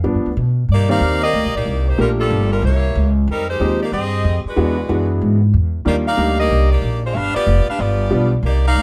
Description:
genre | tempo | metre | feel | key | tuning
jazz, big band swing | 186 BPM | 4/4 | swing 62% on 8ths | C minor | A4 = 438 Hz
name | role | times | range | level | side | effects
clear upright piano | accompaniment | 0.0-8.3 s | Eb3 to D5 | -22 LUFS | equal | none
upright bass | bass | 0.0-8.8 s | F1 to B2 | -19 LUFS | equal | none
clear saxophone section | melody | 0.7-8.8 s | G3 to F5 | -22 LUFS | equal | none
room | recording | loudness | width
light reverb | dark, warm production | -17 LUFS | mono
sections
0.7-8.8 A section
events
none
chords
0.0 G7; 0.7 Cm9; 2.0 Gm7; 2.6 C7b9; 3.3 Fm9; 4.6 E9; 5.8 Ebmaj7; 7.1 G7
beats
0.05 0.37 | 0.69 1.02 1.34 1.66 | 1.98 2.31 2.63 2.95 | 3.27 3.59 3.92 4.24 | 4.56 4.88 5.21 5.53 | 5.85 6.17 6.49 6.82 | 7.14 7.46 7.78 8.11 | 8.43 8.75

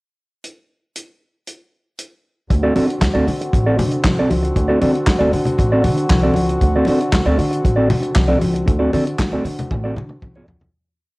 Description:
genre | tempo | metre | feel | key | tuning
disco | 117 BPM | 4/4 | straight | unclear | A4 = 441 Hz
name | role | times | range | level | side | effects
warm soul drum kit | drums | 0.4-10.7 s | handclaps, hi-hat, kick drum, snare drum, toms | -20 LUFS | equal | cassette tape
mellow electric guitar | accompaniment | 2.5-10.7 s | C4 to D5 | -19 LUFS | right 1 dB | cassette tape
warm French horn section | sustained chords | 2.5-10.7 s | D3 to F#4 | -23 LUFS | equal | cassette tape
upright bass | bass | 2.5-10.7 s | A1 to D3 | -20 LUFS | equal | none
congas | percussion | 2.8-10.6 s | none | -24 LUFS | left 2 dB | none
room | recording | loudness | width
small room reverb | home recording on cassette | -14 LUFS | side -23 dB against mid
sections
0.4-2.5 pickup bar; 2.5-10.7 pre-chorus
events
fade-out 8.7-10.7; drum fill 9.7-10.7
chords
0.4 N.C.; 2.5 D7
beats
| 0.44 0.95 1.47 1.99 | 2.50 3.02 3.53 4.05 | 4.57 5.08 5.59 6.11 | 6.62 7.14 7.65 8.17 | 8.68 9.20 9.71 10.22

